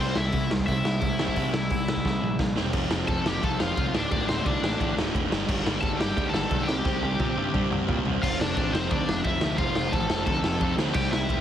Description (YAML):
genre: punk rock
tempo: 175 BPM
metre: 4/4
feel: straight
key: unclear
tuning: A4 = 440 Hz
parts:
  - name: cranked stack guitar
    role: melody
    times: 0.0-11.4 s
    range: C4 to A5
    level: -30 LUFS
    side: left 2 dB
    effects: overdrive
  - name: distorted electric guitar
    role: riff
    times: 0.0-11.4 s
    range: D2 to C4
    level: -31 LUFS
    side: right 12 dB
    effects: distortion
  - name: sludgy distorted guitar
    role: riff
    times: 0.0-11.4 s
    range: D2 to C4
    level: -31 LUFS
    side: left 10 dB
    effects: overdrive
  - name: growling picked electric bass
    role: bass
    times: 0.0-11.4 s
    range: D1 to Bb2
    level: -31 LUFS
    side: equal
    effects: overdrive
  - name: raw garage drum kit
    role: drums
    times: 0.2-11.4 s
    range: crash cymbal, hi-hat, kick drum, ride cymbal, snare drum, toms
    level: -28 LUFS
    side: equal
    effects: none
room: light reverb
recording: heavily compressed radio sound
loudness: -23 LUFS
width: side -10 dB against mid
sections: 0.0-2.7 A section; 2.7-8.2 B section; 8.2-11.4 C section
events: drum fill 2.1-2.7, 6.9-8.2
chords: 0.0 C; 2.7 F; 3.9 D5; 5.3 G5; 6.7 C5; 8.2 F